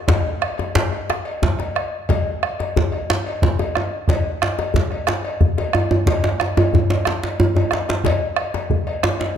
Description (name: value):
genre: west african traditional, West African drum ensemble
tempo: 121 BPM (dotted quarters)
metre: 12/8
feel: straight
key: none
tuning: none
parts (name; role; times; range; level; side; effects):
- bombo; percussion; 0.1-9.2 s; none; -22 LUFS; right 3 dB; none
- cowbell; percussion; 0.1-9.3 s; none; -27 LUFS; left 3 dB; none
- djembe; percussion; 0.1-9.2 s; none; -23 LUFS; left 6 dB; none
- djembe; percussion; 0.1-9.4 s; none; -20 LUFS; right 2 dB; none
room: moderate recital hall reverb, RT60 1.5 s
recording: none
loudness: -18 LUFS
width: side -9 dB against mid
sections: 0.1-9.4 A section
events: drum fill 7.4-8.0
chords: none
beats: | 0.09 0.59 1.09 1.59 | 2.09 2.59 3.09 3.59 | 4.09 4.59 5.08 5.58 | 6.07 6.57 7.06 7.56 | 8.05 8.54 9.03